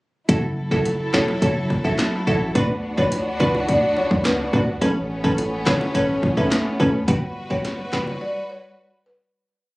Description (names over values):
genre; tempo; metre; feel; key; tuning
dancehall; 106 BPM; 4/4; straight; F# phrygian; A4 = 440 Hz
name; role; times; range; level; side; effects
wavetable chord stab; accompaniment; 0.3-8.1 s; C#4 to B4; -24 LUFS; equal; none
warm studio string section; sustained chords; 0.3-9.3 s; F#3 to B4; -27 LUFS; equal; sidechain pumping
hard-hitting 808-style bass; bass; 0.3-8.2 s; E1 to D2; -25 LUFS; equal; none
deep house drum kit; drums; 0.3-8.1 s; handclaps, hi-hat, kick drum, rim click, snare drum; -24 LUFS; equal; overdrive
buzzing marimba with medium mallets; melody; 0.7-9.2 s; A4 to E5; -25 LUFS; equal; none
bongos; percussion; 0.9-8.2 s; none; -29 LUFS; left 1 dB; none
room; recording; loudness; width
small room ambience; recorded on a phone in the room, club reverb, compression; -19 LUFS; side -21 dB against mid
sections
0.3-9.3 chorus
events
fade-out 7.1-9.3; break 8.2-9.3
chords
0.3 F#m7; 2.6 D6; 4.8 Aadd9; 7.1 Gmaj7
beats
| 0.29 0.85 1.42 1.99 | 2.55 3.12 3.69 4.25 | 4.82 5.38 5.95 6.51 | 7.08 7.65 8.21 8.78